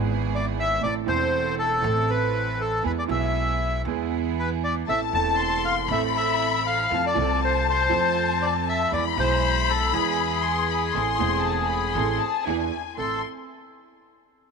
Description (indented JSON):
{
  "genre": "tango",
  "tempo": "119 BPM",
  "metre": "4/4",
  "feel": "rubato",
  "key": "A harmonic minor",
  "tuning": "A4 = 440 Hz",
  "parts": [
    { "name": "clear concert grand piano", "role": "accompaniment", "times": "0.0-13.2 s", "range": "E1 to C5", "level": "-29 LUFS", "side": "right 13 dB", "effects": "none" },
    { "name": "rich studio string section", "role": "stabs", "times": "0.0-13.2 s", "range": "G#3 to A4", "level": "-33 LUFS", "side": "right 13 dB", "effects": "none" },
    { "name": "upright bass", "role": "bass", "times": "0.0-13.2 s", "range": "E1 to F2", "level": "-30 LUFS", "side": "left 1 dB", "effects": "none" },
    { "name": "bandoneon", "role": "melody", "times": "0.3-13.2 s", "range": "G#4 to A5", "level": "-25 LUFS", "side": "left 2 dB", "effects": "none" },
    { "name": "warm studio violin section", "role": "second line", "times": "4.9-13.2 s", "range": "G#5 to C6", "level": "-26 LUFS", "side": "left 14 dB", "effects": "none" }
  ],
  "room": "light reverb",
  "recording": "1960s-style stereo with parts hard left and right",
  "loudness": "-21 LUFS",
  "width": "side -5 dB against mid",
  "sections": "0.0-13.0 A section; 13.0-14.5 B section",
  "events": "none",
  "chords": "0.0 E/G#; 0.8 Am; 2.8 E; 4.9 Am; 6.9 F; 8.9 E; 10.9 Am; 12.5 E7; 13.0 Am",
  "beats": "0.32 | 0.82 1.33 1.83 2.33 | 2.84 3.34 3.85 4.36 | 4.87 5.38 5.88 6.39 | 6.90 7.41 7.91 8.42 | 8.92 9.43 9.93 10.44 | 10.95 11.45 11.96 12.47 | 12.98"
}